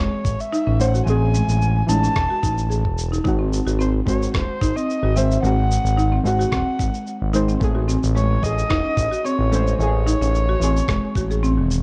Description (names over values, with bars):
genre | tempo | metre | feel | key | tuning
organic downtempo | 110 BPM | 4/4 | swing 53% on 16ths | unclear | A4 = 442 Hz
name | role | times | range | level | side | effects
dark kamancheh | melody | 0.0-11.7 s | B#4 to A5 | -28 LUFS | equal | cassette tape, analog delay
deep mellow chord stab | accompaniment | 0.0-11.8 s | D#3 to B#4 | -28 LUFS | equal | chorus, sidechain pumping, cassette tape, tape echo
buzzing marimba with medium hard mallets | arpeggios | 0.0-11.7 s | D#3 to G#4 | -28 LUFS | equal | cassette tape, tape echo
smooth gliding synth bass | bass | 0.0-11.8 s | D#1 to A1 | -23 LUFS | equal | sidechain pumping
electronic kick drum | drums | 0.2-11.3 s | none | -27 LUFS | equal | small room ambience
electronic shaker and rim click | drums | 0.3-11.8 s | none | -34 LUFS | equal | small room ambience
room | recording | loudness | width
light reverb | home recording on cassette, nothing above 11.0 kHz | -20 LUFS | mono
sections
0.0-11.8 A section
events
none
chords
0.0 Amaj7; 3.3 G#7; 7.6 Amaj7